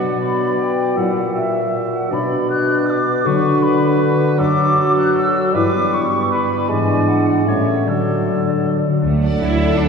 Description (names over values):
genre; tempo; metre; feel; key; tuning
classical; 156 BPM; 3/4; straight; B minor, D major from 4.4 s; A4 = 444 Hz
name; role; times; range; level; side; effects
mellow hollow small flute group; second line; 0.0-8.8 s; D5 to F#6; -22 LUFS; left 1 dB; none
warm clarinet; second line; 0.0-8.9 s; E4 to G4; -24 LUFS; left 1 dB; none
warm oboe; second line; 0.0-8.9 s; A4 to E5; -26 LUFS; right 3 dB; none
mellow bassoon; accompaniment; 0.0-8.9 s; A#2 to A3; -22 LUFS; equal; none
concert harp; arpeggios; 0.0-9.9 s; F#2 to E5; -20 LUFS; left 2 dB; none
mellow French horn section; sustained chords; 1.0-9.9 s; E3 to E4; -24 LUFS; right 1 dB; none
rich symphonic cello section; bass; 9.1-9.9 s; A3 to E4; -24 LUFS; right 3 dB; none
rich symphonic double bass section; bass; 9.1-9.9 s; D2; -20 LUFS; right 2 dB; none
clear symphonic violin section; melody; 9.2-9.9 s; F#5; -37 LUFS; right 2 dB; none
rich studio viola section; accompaniment; 9.2-9.9 s; A4 to D5; -27 LUFS; right 3 dB; none
rich symphonic violin section; second line; 9.4-9.9 s; A4; -30 LUFS; left 2 dB; none
room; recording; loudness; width
wet church reverb, RT60 3.1 s; heard from further back in the room; -14 LUFS; side -5 dB against mid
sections
0.0-9.1 A section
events
none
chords
0.0 Bm; 1.0 F#7/A#; 2.1 Bm; 3.3 Bm/D; 4.4 D/F#; 5.5 Em7/G; 6.7 E7/G#; 7.5 A7; 7.9 D